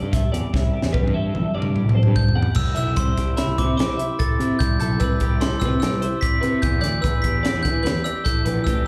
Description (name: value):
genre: math rock and midwest emo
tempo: 147 BPM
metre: 5/4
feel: straight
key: unclear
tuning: A4 = 440 Hz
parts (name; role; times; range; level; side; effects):
- twelve-string electric guitar; accompaniment; 0.0-8.9 s; A2 to C5; -30 LUFS; equal; ensemble chorus
- twelve-string electric guitar; arpeggios; 0.0-8.9 s; G4 to F#5; -33 LUFS; equal; spring reverb, slapback echo
- fuzz picked electric bass; bass; 0.0-8.8 s; A1 to E3; -26 LUFS; equal; overdrive
- crisp fusion drum kit; drums; 0.1-8.8 s; crash cymbal, hi-hat, kick drum, snare drum, toms; -24 LUFS; equal; none
- glockenspiel with hard plastic mallets; melody; 2.2-8.8 s; B5 to B6; -28 LUFS; equal; none
room: studio ambience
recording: live gig heard through the venue's PA, club reverb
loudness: -21 LUFS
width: mono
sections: 0.0-2.6 A section; 2.6-8.9 B section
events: drum fill 0.5-2.6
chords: 0.0 C6; 2.6 Cmaj7; 6.6 Em7